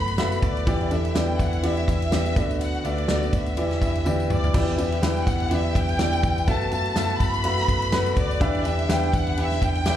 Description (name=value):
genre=piano-driven pop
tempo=124 BPM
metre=4/4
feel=swing 56% on 16ths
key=E minor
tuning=A4 = 444 Hz
part: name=warm symphonic violin section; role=melody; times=0.0-10.0 s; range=D5 to B5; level=-28 LUFS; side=equal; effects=slapback echo
part: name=warm upright piano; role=accompaniment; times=0.0-10.0 s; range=D3 to G5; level=-26 LUFS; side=equal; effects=slapback echo
part: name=warm studio string section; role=sustained chords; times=0.0-10.0 s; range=D3 to F#4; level=-36 LUFS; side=left 2 dB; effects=none
part: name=vintage muted fingered electric bass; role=bass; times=0.0-10.0 s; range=D2 to F#2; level=-26 LUFS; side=equal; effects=none
part: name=natural country drum kit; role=drums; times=0.1-10.0 s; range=crash cymbal, kick drum, ride cymbal, snare drum, toms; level=-26 LUFS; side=equal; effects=none
part: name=tambourine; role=percussion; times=0.1-10.0 s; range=none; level=-46 LUFS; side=left 2 dB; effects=none
room=light reverb, small room ambience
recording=live gig heard through the venue's PA, club reverb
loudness=-20 LUFS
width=side -11 dB against mid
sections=0.0-4.5 A section; 4.5-10.0 A section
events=drum fill 4.1-4.5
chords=0.0 B7sus4/F#; 0.7 Em7; 2.4 Bm7/D; 3.6 Em7; 6.5 B7sus4/F#; 8.4 Em7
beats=0.18 | 0.67 1.15 1.64 2.12 | 2.60 3.09 3.57 4.06 | 4.54 5.02 5.51 5.99 | 6.48 6.96 7.44 7.93 | 8.41 8.89 9.38 9.86